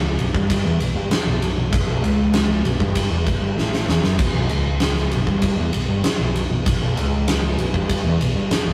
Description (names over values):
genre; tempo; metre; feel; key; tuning
hard rock; 97 BPM; 4/4; straight; unclear; A4 = 442 Hz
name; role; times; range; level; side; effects
overdriven semi-hollow guitar; riff; 0.0-8.7 s; B1 to A2; -26 LUFS; equal; none
sludgy distorted guitar; riff; 0.0-8.7 s; B1 to A2; -28 LUFS; equal; overdrive
picked electric bass; bass; 0.0-8.7 s; B0 to A1; -28 LUFS; equal; none
huge arena drum kit; drums; 0.2-8.7 s; crash cymbal, kick drum, ride cymbal, snare drum; -23 LUFS; equal; none
room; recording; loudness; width
moderate stone room reverb, RT60 1.3 s; rough rehearsal-room recording, warm saturation; -20 LUFS; mono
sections
0.0-8.7 A section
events
drum fill 3.6-4.2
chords
0.0 B5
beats
0.50 1.12 | 1.73 2.35 2.96 3.58 | 4.20 4.81 5.43 6.04 | 6.66 7.28 7.89 8.51